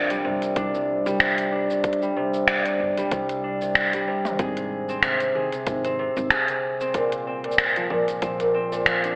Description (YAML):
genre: folktronica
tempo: 94 BPM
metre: 4/4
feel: swing 56% on 16ths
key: unclear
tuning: A4 = 442 Hz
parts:
  - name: concert harp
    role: arpeggios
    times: 0.0-9.2 s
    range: Bb2 to Ab4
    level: -26 LUFS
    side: equal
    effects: tape echo
  - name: upright bass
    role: bass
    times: 0.0-9.2 s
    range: G1 to Eb2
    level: -37 LUFS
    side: equal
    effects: none
  - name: organic electronic drum kit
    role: drums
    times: 0.1-9.2 s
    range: finger snaps, hi-hat, shaker, toms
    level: -25 LUFS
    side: equal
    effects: overdrive
  - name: electronic kick drum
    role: drums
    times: 0.6-8.4 s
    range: none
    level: -34 LUFS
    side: equal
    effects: overdrive
room: moderate echo chamber reverb, RT60 2.3 s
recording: telephone sound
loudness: -24 LUFS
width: mono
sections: 0.0-9.2 A section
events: none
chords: 0.0 Csus2; 4.4 Ab; 6.9 Bbsus2